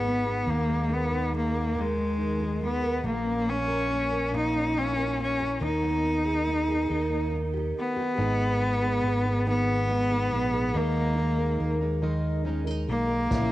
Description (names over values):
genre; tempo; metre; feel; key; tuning
six-eight pop ballad; 47 BPM (dotted quarters); 6/8; straight; G# minor; A4 = 440 Hz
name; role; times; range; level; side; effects
bright cello; melody; 0.0-13.5 s; G#3 to D#4; -27 LUFS; left 1 dB; cassette tape
nylon-string guitar; accompaniment; 0.0-13.5 s; G#2 to A#4; -32 LUFS; equal; double-tracked left and right, cassette tape
fingered electric bass; bass; 0.0-13.5 s; G#1 to D#2; -30 LUFS; equal; none
fingerpicked plugged-in steel-string acoustic guitar; arpeggios; 8.2-13.5 s; G#2 to A#4; -33 LUFS; right 2 dB; cassette tape
warm French horn section; sustained chords; 13.3-13.5 s; C#3 to E4; -31 LUFS; right 1 dB; cassette tape
jazz brush drum kit; drums; 13.3-13.5 s; hi-hat, kick drum; -27 LUFS; equal; cassette tape
room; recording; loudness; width
light reverb; home recording on cassette; -24 LUFS; side -15 dB against mid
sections
0.0-8.2 A section; 8.2-13.5 B section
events
none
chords
0.5 D#sus4; 3.0 A#dim; 5.6 G#m/D#; 6.9 D#; 8.2 G#m; 10.7 D#sus4